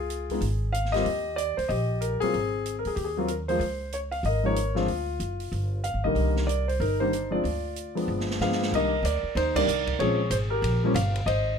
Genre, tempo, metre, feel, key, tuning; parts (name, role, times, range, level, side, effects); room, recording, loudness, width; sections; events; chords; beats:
jazz piano trio; 188 BPM; 4/4; swing 62% on 8ths; C minor; A4 = 440 Hz
warm concert grand piano; melody; 0.0-11.6 s; D3 to F5; -26 LUFS; left 1 dB
upright bass; bass; 0.0-11.6 s; F#1 to G2; -29 LUFS; equal
open jazz drum kit; drums; 0.1-11.4 s; crash cymbal, hi-hat, kick drum, ride cymbal, snare drum; -36 LUFS; right 4 dB
light reverb; -24 LUFS; side -6 dB against mid
0.0-8.7 A section; 8.7-11.6 B section
drum fill 8.1-8.7; band accent 9.5
0.0 Dbadd9; 1.1 Eb; 2.3 Ab69; 3.6 Db69; 4.9 D(#9); 5.5 G7b9; 6.2 Cm9; 7.4 Dm; 8.1 G7b9; 8.7 Cm7; 10.0 Bbm7; 10.6 Gm7
0.09 0.41 0.73 | 1.05 1.37 1.69 2.01 | 2.33 2.65 2.97 3.29 | 3.61 3.92 4.25 4.56 | 4.88 5.20 5.52 5.84 | 6.16 6.48 6.80 7.12 | 7.44 7.76 8.08 8.40 | 8.72 9.04 9.36 9.67 | 9.99 10.31 10.63 10.95 | 11.27 11.59